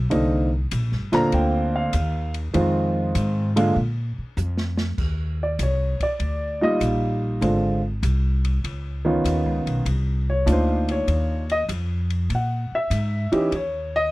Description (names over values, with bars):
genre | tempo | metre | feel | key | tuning
jazz piano trio | 98 BPM | 4/4 | swing 68% on 8ths | Eb major | A4 = 440 Hz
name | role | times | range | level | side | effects
upright bass | bass | 0.0-14.1 s | Eb1 to Bb2 | -23 LUFS | equal | none
warm upright piano | melody | 0.1-14.1 s | D3 to Bb5 | -22 LUFS | equal | none
open jazz drum kit | drums | 0.1-13.7 s | crash cymbal, hi-hat, kick drum, ride cymbal, snare drum | -35 LUFS | equal | none
room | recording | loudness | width
little or no reverb | dry, close 1970s-style studio recording | -20 LUFS | side -19 dB against mid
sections
0.0-5.0 A section; 5.0-14.1 B section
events
drum fill 4.4-5.0; upright piano solo 5.0-14.1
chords
0.1 Cm9; 2.5 Fm7; 3.8 Bb5; 5.0 Ebmaj9; 7.4 Dm7b5; 8.6 Db9; 9.9 Cm11; 12.3 Bb7(b5, no3); 13.5 Eb5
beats
| 0.11 0.72 1.33 1.94 | 2.54 3.15 3.76 4.37 | 4.98 5.59 6.20 6.81 | 7.42 8.03 8.64 9.25 | 9.86 10.47 11.08 11.69 | 12.30 12.91 13.52